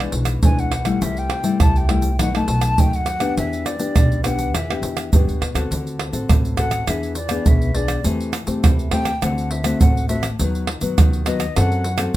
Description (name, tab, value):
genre	samba and choro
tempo	102 BPM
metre	4/4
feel	straight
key	E minor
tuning	A4 = 439 Hz
part	wooden flute	melody	0.0-12.1 s	D5 to A5	-26 LUFS	left 1 dB	none
part	nylon-string guitar	accompaniment	0.0-12.2 s	F#2 to A4	-24 LUFS	left 3 dB	none
part	upright bass	bass	0.0-12.1 s	A1 to G2	-23 LUFS	equal	none
part	egg shaker, pandeiro, tamborim and surdo	percussion	0.0-12.2 s	none	-19 LUFS	right 2 dB	none
room	moderate studio reverb, RT60 0.5 s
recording	minimal, uncompressed stereo recording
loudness	-17 LUFS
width	side -15 dB against mid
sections	0.0-5.7 A section; 5.7-12.2 B section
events	flute solo 5.7-12.2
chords	0.0 E7/B; 1.0 Am7/C; 2.2 B7; 3.4 Em7; 5.7 D7; 6.9 E7; 8.1 Am7/E; 9.2 D7; 10.4 B/D#; 11.6 F#dim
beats	0.44 | 1.02 1.61 2.20 2.78 | 3.37 3.96 4.54 5.13 | 5.71 6.30 6.89 7.47 | 8.06 8.64 9.23 9.81 | 10.40 10.98 11.56 12.15